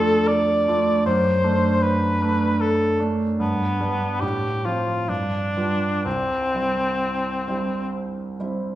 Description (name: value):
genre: classical, romantic duo for cor anglais and grand piano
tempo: 60-78 BPM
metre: 3/4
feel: rubato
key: C major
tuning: A4 = 440 Hz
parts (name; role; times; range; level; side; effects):
- warm cor anglais; melody; 0.0-7.9 s; B3 to D5; -22 LUFS; left 1 dB; none
- clear grand piano; accompaniment; 0.0-8.8 s; C2 to F4; -23 LUFS; right 2 dB; none
room: wet recital hall reverb, RT60 1.3 s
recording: heard from further back in the room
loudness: -20 LUFS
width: side -14 dB against mid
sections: 0.0-8.8 A section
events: none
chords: 0.0 Dm/F; 1.1 D7/F#; 3.4 G; 4.2 F/A; 5.1 G7; 6.1 C